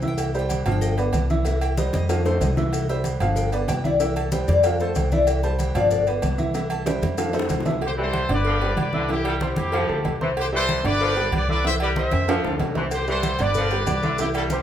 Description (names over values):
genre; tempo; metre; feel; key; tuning
latin, salsa; 188 BPM; 4/4; straight; C major; A4 = 440 Hz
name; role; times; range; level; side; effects
bright upright piano; accompaniment; 0.0-14.6 s; D3 to E6; -27 LUFS; right 2 dB; none
upright bass; bass; 0.0-14.6 s; G1 to F2; -25 LUFS; equal; none
congas; percussion; 0.0-14.6 s; none; -30 LUFS; equal; none
maracas; percussion; 0.0-7.8, 12.9-14.6 s; none; -40 LUFS; left 6 dB; none
Cuban tres; melody; 0.1-7.2 s; C5 to A5; -25 LUFS; left 4 dB; none
agogo bells and timbales; percussion; 0.2-14.5 s; none; -31 LUFS; right 5 dB; none
cowbell and bongos; percussion; 0.2-14.6 s; none; -31 LUFS; left 3 dB; none
bright trumpet section; melody; 7.8-14.6 s; E4 to E5; -25 LUFS; left 1 dB; none
bright saxophone section; second line; 8.0-14.6 s; D3 to G3; -29 LUFS; equal; none
room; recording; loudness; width
moderate large studio reverb, RT60 1.2 s; band playing live in one room; -20 LUFS; side -10 dB against mid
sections
0.0-7.8 A section; 7.8-14.6 B section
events
Cuban tres solo 0.0-7.8; drum fill 2.1-2.7, 6.9-7.8, 12.1-12.9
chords
0.2 C; 0.8 G7; 1.5 C; 2.1 F; 2.7 C; 3.4 G7; 4.0 C; 4.6 F; 5.3 C; 5.9 G7; 6.5 C; 7.2 F; 7.8 C; 8.5 G7; 9.1 C; 9.7 Fadd9; 10.4 C; 11.0 G7; 11.6 C; 12.3 F; 12.9 C; 13.6 G7